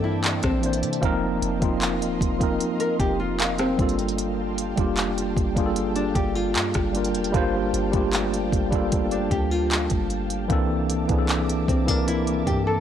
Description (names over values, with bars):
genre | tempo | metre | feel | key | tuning
contemporary R&B | 76 BPM | 4/4 | straight | G minor | A4 = 440 Hz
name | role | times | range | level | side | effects
mellow tine electric piano | accompaniment | 0.0-12.8 s | E3 to G5 | -25 LUFS | equal | medium stereo tremolo
ethereal airy pad | sustained chords | 0.0-12.8 s | Bb3 to D6 | -34 LUFS | left 1 dB | ensemble chorus, built-in reverb
nylon-string guitar | arpeggios | 0.0-12.8 s | C4 to Bb4 | -28 LUFS | left 2 dB | tape echo
soft 808-style bass | bass | 0.0-12.8 s | Eb1 to C3 | -29 LUFS | equal | none
smooth R&B drum kit | drums | 0.2-12.7 s | handclaps, hi-hat, kick drum, rim click | -25 LUFS | equal | none
room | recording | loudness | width
digital ambience | dry, gritty hardware recording, transformer saturation | -21 LUFS | side -9 dB against mid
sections
0.0-12.8 A section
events
tine electric piano fill 3.0-4.2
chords
0.0 C13; 1.0 F7sus4; 3.8 Gm9; 10.5 C13